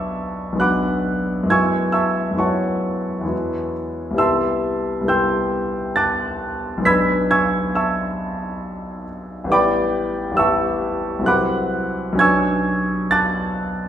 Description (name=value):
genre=classical, impressionist solo piano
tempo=67 BPM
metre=3/4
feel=uneven beats, rubato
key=B dorian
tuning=A4 = 439 Hz
part: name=clear grand piano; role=solo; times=0.0-13.9 s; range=A1 to B6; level=-18 LUFS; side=equal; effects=none
room=wet recital hall reverb, RT60 1.6 s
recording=heard from further back in the room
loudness=-17 LUFS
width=side -10 dB against mid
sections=0.0-13.9 A section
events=none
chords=0.0 Bm6; 1.5 F#9sus4; 3.3 E69; 4.2 Cmaj7; 6.9 Bm6; 9.5 A9sus4; 11.3 Cmaj7#11; 12.2 Bmadd9